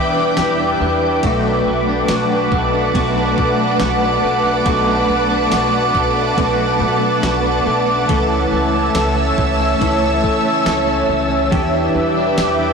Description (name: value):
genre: dream pop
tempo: 70 BPM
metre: 4/4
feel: straight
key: unclear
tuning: A4 = 438 Hz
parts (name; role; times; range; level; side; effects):
- mellow electric guitar; accompaniment; 0.0-12.7 s; E2 to F#4; -22 LUFS; equal; tremolo, lush chorus
- ethereal airy pad; sustained chords; 0.0-12.7 s; B4 to E6; -16 LUFS; right 1 dB; ensemble chorus, built-in reverb
- direct-recorded clean electric guitar; arpeggios; 0.0-12.7 s; E3 to A4; -21 LUFS; left 2 dB; analog chorus, ping-pong delay
- upright bass; bass; 0.0-12.7 s; B1 to E3; -24 LUFS; equal; none
- clean 12-bit digital drum machine; drums; 0.4-12.6 s; kick drum, ride cymbal, snare drum, tambourine; -24 LUFS; equal; none
room: wet studio reverb, RT60 0.6 s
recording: blown-out, overdriven recording, overdrive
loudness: -14 LUFS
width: side -5 dB against mid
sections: 0.0-12.7 A section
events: none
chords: 0.0 Em7; 1.2 Bm7; 8.1 A/C#; 11.5 Em7